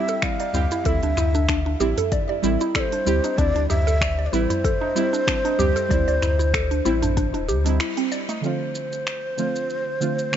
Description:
organic downtempo; 95 BPM; 4/4; swing 55% on 16ths; A4 = 441 Hz
breathy low ney; melody; 0.0-10.4 s; C5 to F5; -26 LUFS; left 1 dB; digital delay
deep mellow chord stab; accompaniment; 0.0-10.4 s; D3 to G4; -27 LUFS; right 4 dB; chorus, vintage 12-bit sampler grit, sidechain pumping, digital delay
mallet-like synth pluck; arpeggios; 0.0-8.4 s; A3 to D5; -26 LUFS; right 1 dB; chorus, phaser, digital delay
organic electronic drum kit; drums; 0.1-10.4 s; finger snaps, hi-hat, shaker; -29 LUFS; equal; overdrive
electronic kick drum; drums; 0.2-7.3 s; -26 LUFS; left 1 dB; overdrive
tabla; percussion; 0.4-8.4 s; -33 LUFS; right 1 dB
warm sub bass; bass; 0.5-7.8 s; D1 to D2; -22 LUFS; left 1 dB
light reverb, digital ambience; nothing above 7.7 kHz; -20 LUFS; side -9 dB against mid
0.0-8.4 A section; 8.4-10.4 B section
break 7.8-8.4; band accent 7.8-8.1
0.0 C; 8.4 Dm7

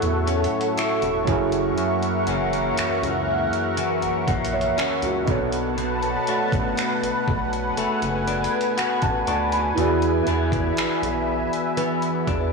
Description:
contemporary R&B; 60 BPM; 4/4; straight; A4 = 440 Hz
warm concert grand piano; accompaniment; 0.0-12.5 s; B2 to C#6; -26 LUFS; right 6 dB
lush unison pad; sustained chords; 0.0-12.5 s; A4 to C#6; -25 LUFS; left 1 dB; chorus, phaser
direct-recorded clean electric guitar; arpeggios; 0.0-12.5 s; F#2 to G#4; -27 LUFS; left 7 dB; warbly pitch drift, digital delay
rubbery square bass; bass; 0.0-12.5 s; E1 to E3; -28 LUFS; right 1 dB; transformer saturation
detuned 8-bit digital drum machine; drums; 0.0-12.5 s; finger snaps, hi-hat, kick drum; -29 LUFS; equal; overdrive, soft clipping on snare
moderate echo chamber reverb, RT60 2.1 s; blown-out, overdriven recording, overdrive; -20 LUFS; side -3 dB against mid
0.0-12.5 A section
0.0 A6; 1.3 F#7; 5.3 Bm7; 9.8 E7

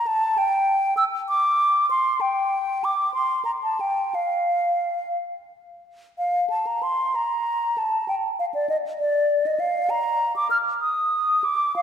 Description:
classical, baroque-style fantasia for unaccompanied flute; 57-68 BPM (dotted quarters); 6/8; rubato; F major, Bb major from 6.2 s; A4 = 440 Hz
mellow hollow silver concert flute; solo; 0.0-11.8 s; D5 to F6; -20 LUFS; equal
wet concert hall reverb, RT60 2.3 s; minimal, uncompressed stereo recording; -20 LUFS; side -8 dB against mid
0.0-6.2 A section; 6.2-11.8 A section

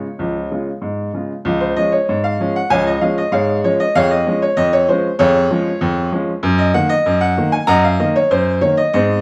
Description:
ragtime piano; 96 BPM; 2/4; straight; Db major; A4 = 436 Hz
bright upright piano; solo; 0.0-9.2 s; Db2 to Bb5; -16 LUFS; equal
wet large studio reverb, RT60 1.0 s; band playing live in one room; -16 LUFS; mono
0.0-1.5 A section; 1.5-9.2 A section
0.0 Db; 4.0 Db/F; 6.4 Ebm/Gb

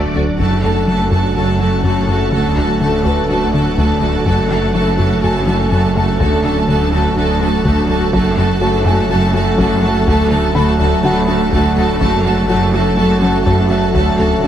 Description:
cinematic, hybrid orchestral and electronic film score; 124 BPM; 4/4; straight; F# minor; A4 = 440 Hz
clear chamber violin section; second line; 0.0-14.5 s; A3 to A5; -20 LUFS; left 1 dB
rich symphonic viola section; accompaniment; 0.0-14.5 s; A3 to F#4; -21 LUFS; right 2 dB
soft additive organ-like pad; sustained chords; 0.0-14.5 s; F#3 to A4; -22 LUFS; right 1 dB; ensemble chorus, built-in reverb
thumb-piano-like synth pluck; arpeggios; 0.0-14.3 s; D3 to F#4; -25 LUFS; left 1 dB
plucky analog bass; riff; 0.0-14.5 s; D2 to F#3; -19 LUFS; left 2 dB
punchy sub bass; bass; 0.0-14.5 s; D1 to F#1; -25 LUFS; equal
clear symphonic double bass section; bass; 0.2-14.5 s; F#1 to D2; -22 LUFS; right 2 dB
rich studio cello section; bass; 0.2-14.5 s; D2 to F#2; -21 LUFS; right 2 dB
warm trombone section; sustained chords; 0.4-14.5 s; F#3 to A3; -21 LUFS; right 1 dB
solo taiko drums; drums; 0.4-1.3, 4.3-14.4 s; -24 LUFS; equal
felt-muted upright piano; texture; 0.6-14.5 s; F#4 to B5; -27 LUFS; left 2 dB; digital delay
moderate scoring stage reverb, RT60 1.8 s; heavily compressed radio sound; -12 LUFS; side -10 dB against mid
0.4-14.5 A section
0.4 F#m; 2.3 D; 4.3 F#m; 6.2 D; 8.1 F#m; 10.1 D; 12.0 F#m; 13.9 D

